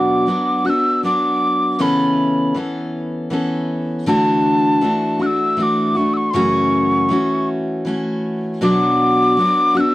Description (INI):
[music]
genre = acoustic folk duo or small band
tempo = 79 BPM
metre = 3/4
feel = straight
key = unclear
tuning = A4 = 440 Hz
[part]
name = breathy mellow mid whistle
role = melody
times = 0.0-9.9 s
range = A5 to F#6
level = -17 LUFS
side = equal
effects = none
[part]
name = picked steel-string acoustic guitar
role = accompaniment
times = 0.0-9.9 s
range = F#2 to A4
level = -17 LUFS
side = equal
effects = none
[sound]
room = light reverb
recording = dry, close 1970s-style studio recording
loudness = -15 LUFS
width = side -17 dB against mid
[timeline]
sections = 0.0-9.9 A section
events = none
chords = 0.0 Bm; 1.8 Aadd9/C#; 4.1 Dadd9; 6.3 F#m7; 8.6 Bm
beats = 0.28 1.03 | 1.79 2.55 3.31 | 4.06 4.82 5.58 | 6.34 7.10 7.86 | 8.62 9.38